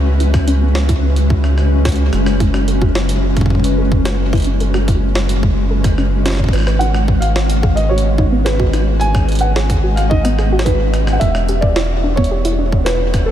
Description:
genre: IDM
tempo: 109 BPM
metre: 4/4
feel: straight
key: unclear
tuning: A4 = 441 Hz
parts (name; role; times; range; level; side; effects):
- granular cloud pad; sustained chords; 0.0-13.3 s; G#3 to F#5; -20 LUFS; equal; built-in reverb, sidechain pumping
- soft round pluck; arpeggios; 0.0-12.7 s; B3 to C#5; -24 LUFS; right 1 dB; chorus, vintage 12-bit sampler grit, tape echo
- round analog bass; bass; 0.0-13.3 s; E1 to C#2; -16 LUFS; equal; none
- jungle sampler-style drum kit; drums; 0.2-13.2 s; hi-hat, rim click, snare drum; -24 LUFS; equal; tape echo
- electronic kick drum; drums; 0.3-13.2 s; none; -16 LUFS; equal; none
- felt-muted upright piano; melody; 6.8-13.3 s; A4 to G#5; -20 LUFS; equal; vintage 12-bit sampler grit, ping-pong delay
room: light reverb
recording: none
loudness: -12 LUFS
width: side -11 dB against mid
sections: 0.0-13.3 A section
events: filter sweep on synth arpeggio sound 0.0-13.3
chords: 0.0 C#m7; 2.1 F#m7; 6.5 G#m7; 11.2 Em7

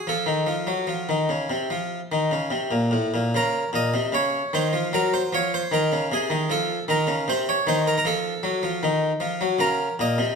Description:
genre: classical, baroque-style suite movement for harpsichord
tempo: 76 BPM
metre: 4/4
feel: rubato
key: unclear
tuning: A4 = 440 Hz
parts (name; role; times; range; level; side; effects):
- harpsichord; solo; 0.0-10.4 s; A2 to Eb5; -21 LUFS; equal; none
room: wet stone room reverb, RT60 1.4 s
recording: none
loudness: -21 LUFS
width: side -5 dB against mid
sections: 0.0-3.3 A section; 3.3-10.4 B section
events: none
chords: 0.0 F; 3.3 Bbm; 4.9 F7; 9.6 Bbm

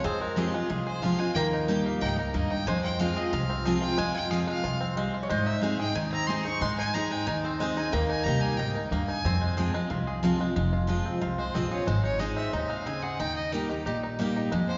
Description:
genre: bluegrass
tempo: 182 BPM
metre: 4/4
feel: straight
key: F minor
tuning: A4 = 442 Hz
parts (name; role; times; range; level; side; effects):
- bluegrass banjo; melody; 0.0-14.8 s; Eb3 to Ab4; -36 LUFS; equal; none
- clear fiddle; melody; 0.0-14.8 s; F4 to Db6; -36 LUFS; equal; none
- lap resonator guitar; second line; 0.0-10.4 s; Ab4 to Db5; -38 LUFS; equal; none
- picked steel-string acoustic guitar; accompaniment; 0.0-14.8 s; F2 to Ab4; -32 LUFS; equal; none
- upright bass; bass; 0.0-14.8 s; F1 to Ab2; -35 LUFS; equal; none
room: wet concert hall reverb, RT60 2.3 s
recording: recorded in a church or concert hall, nothing above 7.5 kHz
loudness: -28 LUFS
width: mono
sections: 0.0-10.6 A section; 10.6-14.8 B section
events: fiddle solo 0.0-10.6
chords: 0.0 Fm; 1.4 Eb; 2.7 Fm; 5.3 Ab; 7.9 Eb; 9.2 Fm; 11.9 Ab; 13.2 Eb

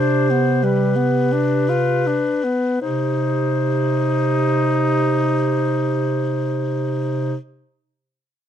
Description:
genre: classical, lyrical piece for single-reed quartet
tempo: 26-32 BPM (dotted quarters)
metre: 6/8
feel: rubato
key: C minor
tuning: A4 = 442 Hz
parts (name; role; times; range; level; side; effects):
- mellow clarinet; melody; 0.0-7.4 s; B4 to C5; -23 LUFS; left 6 dB; none
- mellow clarinet; second line; 0.0-7.3 s; G4; -26 LUFS; right 17 dB; none
- warm tenor saxophone; accompaniment; 0.0-7.4 s; G3 to F4; -22 LUFS; left 2 dB; none
- mellow bass clarinet; bass; 0.0-7.4 s; C3; -22 LUFS; right 3 dB; none
room: little or no reverb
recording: close, detailed microphones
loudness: -17 LUFS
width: side -9 dB against mid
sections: 0.0-2.8 A section; 2.8-7.2 B section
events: slowing down 0.0-2.8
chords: 0.0 G7/C; 2.8 Cm

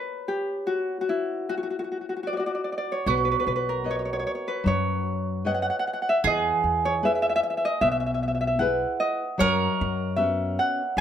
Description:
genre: italian folk, Italian serenade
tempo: 76 BPM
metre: 4/4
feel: straight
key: B minor, B major from 3.1 s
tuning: A4 = 445 Hz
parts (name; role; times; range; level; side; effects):
- Celtic harp; melody; 0.0-11.0 s; E4 to F#5; -26 LUFS; left 1 dB; none
- mandolin; second line; 3.1-11.0 s; F#4 to A#4; -27 LUFS; right 8 dB; none
- nylon-string guitar; accompaniment; 3.1-11.0 s; B2 to D#5; -29 LUFS; left 3 dB; none
- upright bass; bass; 3.1-11.0 s; B1 to F#2; -31 LUFS; right 1 dB; none
room: moderate studio ambience, RT60 0.5 s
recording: none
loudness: -23 LUFS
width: side -9 dB against mid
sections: 0.0-3.1 A section; 3.1-11.0 B section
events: stop 0.0-3.1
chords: 0.0 N.C.; 3.1 Badd9; 6.2 E; 9.4 F#sus4

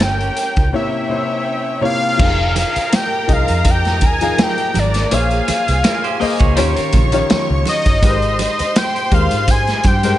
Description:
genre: lush 1970s-style soul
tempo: 82 BPM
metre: 4/4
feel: swing 54% on 16ths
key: F minor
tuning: A4 = 437 Hz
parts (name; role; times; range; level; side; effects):
- fat analog lead; melody; 0.0-10.2 s; D5 to Ab5; -19 LUFS; left 1 dB; none
- warm studio violin section; second line; 0.0-10.2 s; Db4 to Db6; -24 LUFS; right 3 dB; none
- clear grand piano; accompaniment; 0.0-10.2 s; C3 to F5; -21 LUFS; left 4 dB; none
- vintage muted fingered electric bass; bass; 0.0-10.1 s; F1 to Ab2; -19 LUFS; equal; none
- vintage drum kit; drums; 0.0-10.2 s; crash cymbal, hi-hat, kick drum, snare drum; -18 LUFS; equal; none
- congas; percussion; 0.0-10.0 s; none; -26 LUFS; right 6 dB; none
- electric guitar through a small old amp; riff; 5.8-7.8 s; F4 to Eb5; -25 LUFS; right 7 dB; none
room: small room reverb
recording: nothing above 10.9 kHz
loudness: -13 LUFS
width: side -13 dB against mid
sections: 0.0-2.2 A section; 2.2-10.2 B section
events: none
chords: 0.0 Gm7b5; 0.7 C7b9; 2.2 Fm7; 5.1 Bbm9; 6.6 Eb9; 8.0 Abmaj9

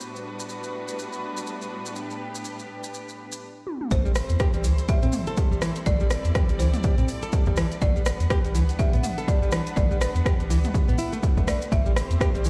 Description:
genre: afro house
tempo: 123 BPM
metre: 4/4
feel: swing 58% on 16ths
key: A dorian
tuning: A4 = 445 Hz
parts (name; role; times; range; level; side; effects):
- clear symphonic string section; sustained chords; 0.0-12.5 s; A2 to F#5; -37 LUFS; equal; sidechain pumping
- maracas; percussion; 0.0-12.5 s; none; -43 LUFS; equal; none
- deep house drum kit; drums; 3.7-12.5 s; hi-hat, rim click, toms; -33 LUFS; equal; overdrive, low-pass filter on hats, low-pass filter on toms, low-pass filter on snare
- folk marimba with hard mallets; melody; 3.9-12.5 s; B4 to F#5; -37 LUFS; equal; dub echo
- nylon-string guitar; arpeggios; 3.9-12.5 s; E3 to A4; -33 LUFS; equal; sidechain pumping, dub echo
- warm sub bass; bass; 3.9-12.5 s; A1 to A2; -27 LUFS; equal; sidechain pumping
- electronic kick drum; drums; 3.9-12.3 s; none; -26 LUFS; equal; overdrive
room: light reverb, small room ambience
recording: played on a big sound system in a bare room, stone room reverb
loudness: -24 LUFS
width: mono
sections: 0.0-3.9 A section; 3.9-12.5 B section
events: drum fill 3.7; drop 3.9-12.5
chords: 0.0 Gmaj7/A; 3.9 Am7; 7.8 Gmaj7/A; 11.7 Am7

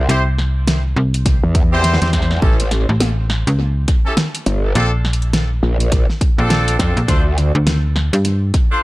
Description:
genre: glitch hop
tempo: 103 BPM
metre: 4/4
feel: swing 60% on 16ths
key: D minor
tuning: A4 = 440 Hz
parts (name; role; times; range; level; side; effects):
- growl bass; bass; 0.0-7.5 s; G1 to F2; -16 LUFS; equal; distortion, chorus, tube saturation
- clear horn section; stabs; 0.1-8.8 s; C4 to C5; -22 LUFS; equal; sidechain pumping, tape echo
- slap-like FM bass; bass; 0.1-8.5 s; A1 to G2; -16 LUFS; equal; none
- pop drum kit; drums; 0.1-8.7 s; hi-hat, snare drum; -21 LUFS; equal; studio reverb, tape echo
- electronic kick drum; drums; 1.3-8.7 s; none; -16 LUFS; equal; studio reverb
room: little or no reverb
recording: echo-heavy mix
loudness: -14 LUFS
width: side -19 dB against mid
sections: 0.0-8.8 A section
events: none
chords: 0.1 C; 2.4 A7; 4.8 Bbmaj7; 7.1 Dm7

